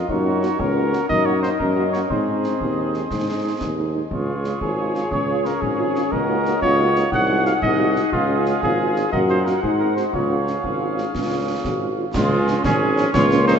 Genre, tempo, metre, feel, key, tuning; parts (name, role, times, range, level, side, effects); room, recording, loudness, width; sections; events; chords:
military-style march for wind band; 120 BPM (dotted quarters); 6/8; straight; Db major; A4 = 444 Hz
mellow woodwind section; second line; 0.0-13.6 s; Ab3 to Gb5; -26 LUFS; right 2 dB
warm euphonium; second line; 0.0-12.1 s; C4 to Gb4; -26 LUFS; left 4 dB
warm cornet; melody; 0.1-13.5 s; F4 to Gb5; -24 LUFS; equal
clear tuba; bass; 0.1-13.6 s; Ab1 to Ab2; -23 LUFS; equal
concert bass drum, concert snare drum and clash cymbals; drums; 0.1-13.6 s; -29 LUFS; equal
mellow French horn section; accompaniment; 0.3-13.5 s; F3 to Gb4; -29 LUFS; right 4 dB
warm trombone section; sustained chords; 12.1-13.6 s; Bb3 to Db4; -24 LUFS; left 2 dB; stereo widening
wet cathedral reverb, RT60 4.8 s; in a vast, echoing space, nothing above 7.8 kHz; -18 LUFS; side -7 dB against mid
0.0-12.1 A section; 12.1-13.6 A section
0.1 Gb; 1.1 Ebm/Gb; 2.1 Ab; 4.1 Db; 6.1 Ebm7/Db; 7.1 Ab7/C; 8.1 Db; 9.1 Ebm/Gb; 9.6 Ab7; 10.1 Db